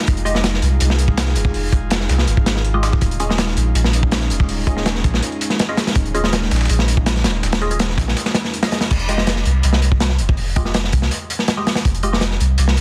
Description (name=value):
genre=drum and bass, jungle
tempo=163 BPM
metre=4/4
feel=straight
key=F minor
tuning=A4 = 440 Hz
part: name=airy breathy pad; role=sustained chords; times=0.0-8.9 s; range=Ab3 to Ab4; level=-31 LUFS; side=equal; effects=chorus
part: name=soft dub sub bass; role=bass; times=0.1-12.8 s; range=Eb1 to C2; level=-21 LUFS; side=equal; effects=tube saturation
part: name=crunchy breakbeat drum kit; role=drums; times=0.1-12.8 s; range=crash cymbal, hi-hat, kick drum, snare drum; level=-21 LUFS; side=equal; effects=none
part: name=dusty soul sampler-style drum kit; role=drums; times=0.1-8.9 s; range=hi-hat, snare drum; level=-33 LUFS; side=equal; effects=none
part: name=filtered dub chord stab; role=stabs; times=0.3-0.4, 2.7-12.2 s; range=Ab3 to Eb5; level=-29 LUFS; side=equal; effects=phaser, subtle chorus, cassette tape, dub echo
room=small room reverb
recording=dense, heavily limited modern master, vinyl crackle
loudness=-18 LUFS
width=mono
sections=0.0-8.9 A section; 8.9-12.8 A section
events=drop 0.0-8.9, 8.9-12.8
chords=0.0 Fm7; 3.0 Eb9sus4; 8.9 Fm9